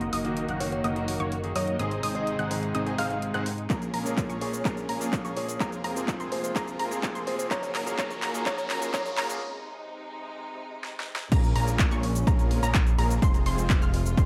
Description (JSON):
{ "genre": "EDM, festival progressive house", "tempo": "126 BPM", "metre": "4/4", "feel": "straight", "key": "Bb minor", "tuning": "A4 = 440 Hz", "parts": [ { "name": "rich symphonic string section", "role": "sustained chords", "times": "0.0-14.3 s", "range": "Bb2 to Gb4", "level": "-40 LUFS", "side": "equal", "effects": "sidechain pumping, low-pass filter" }, { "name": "unison pluck", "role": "arpeggios", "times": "0.0-14.3 s", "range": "Bb5 to Gb6", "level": "-37 LUFS", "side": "equal", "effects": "vintage 12-bit sampler grit, sidechain pumping, digital delay" }, { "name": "dense compressed supersaw", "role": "riff", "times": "0.0-14.3 s", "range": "Ab3 to Gb5", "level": "-37 LUFS", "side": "equal", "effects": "sidechain pumping, low-pass filter, digital delay" }, { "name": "fat analog bass", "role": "bass", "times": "0.0-14.3 s", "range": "F1 to Ab2", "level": "-34 LUFS", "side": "equal", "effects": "tube saturation, sidechain pumping" }, { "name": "big-room dance drum kit", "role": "drums", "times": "0.0-14.3 s", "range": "cabasa, crash cymbal, handclaps, hi-hat, snare drum", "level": "-37 LUFS", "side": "equal", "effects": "overdrive, high-pass filter on hats, high-pass filter on snare, high-pass filter on perc, high-pass filter on cymbals" }, { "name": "bright concert grand piano", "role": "accompaniment", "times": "0.2-9.4 s", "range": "Ab2 to Ab4", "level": "-38 LUFS", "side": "equal", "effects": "sidechain pumping, digital delay" }, { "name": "bell-like FM electric piano", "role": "melody", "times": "0.6-9.1 s", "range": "C5 to F5", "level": "-37 LUFS", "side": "equal", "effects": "chorus, phaser, digital delay" }, { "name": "electronic kick drum", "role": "drums", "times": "3.7-14.3 s", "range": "none", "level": "-28 LUFS", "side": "equal", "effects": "overdrive" }, { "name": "riser", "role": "sound effects", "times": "7.2-9.4 s", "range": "none", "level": "-47 LUFS", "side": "equal", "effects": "none" } ], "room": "moderate digital room reverb, RT60 1.1 s", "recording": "high-pass filter", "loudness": "-27 LUFS", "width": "mono", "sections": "0.0-11.3 A section; 11.3-14.3 B section", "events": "build-up 0.0-11.3; filter sweep on string section 0.0-11.3; filter sweep 0.0-11.3; drum fill 3.7-9.4, 10.8-11.3; break 9.4-11.3; drop 11.3-14.3", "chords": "0.0 Ebm/Gb; 1.8 Ab; 3.7 Bbm7; 5.6 Fm; 7.5 Ebm/Gb; 9.4 Ab; 11.3 Bbm7; 13.2 Fm" }